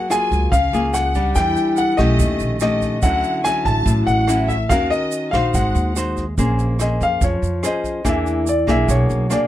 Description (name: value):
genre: bossa nova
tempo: 144 BPM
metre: 4/4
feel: straight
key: unclear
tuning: A4 = 440 Hz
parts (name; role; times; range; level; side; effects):
- warm concert grand piano; melody; 0.0-9.5 s; Db5 to A5; -21 LUFS; left 1 dB; none
- warm symphonic violin section; second line; 0.0-5.9 s; D#5 to A5; -29 LUFS; left 1 dB; none
- nylon-string guitar; accompaniment; 0.0-9.5 s; A2 to B#4; -21 LUFS; left 2 dB; none
- vintage brush drum kit; drums; 0.1-9.4 s; hi-hat, kick drum, rim click; -25 LUFS; right 1 dB; none
- tube shaker; percussion; 0.1-9.5 s; none; -32 LUFS; right 9 dB; none
- upright bass; bass; 0.3-9.3 s; G#1 to F2; -20 LUFS; right 1 dB; none
room: little or no reverb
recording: close, detailed microphones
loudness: -16 LUFS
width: side -13 dB against mid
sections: 0.0-6.4 A section; 6.4-9.5 B section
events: grand piano solo 6.4-9.5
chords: 0.0 F#maj9; 1.4 Em7; 2.2 D#7#11; 3.0 Dmaj9; 4.7 D#m7; 5.5 G#7; 6.4 Bbm9; 8.1 E7#11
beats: 0.11 0.53 0.94 | 1.36 1.78 2.20 2.62 | 3.04 3.45 3.87 4.29 | 4.71 5.12 5.54 5.96 | 6.38 6.80 7.21 7.63 | 8.05 8.47 8.89 9.30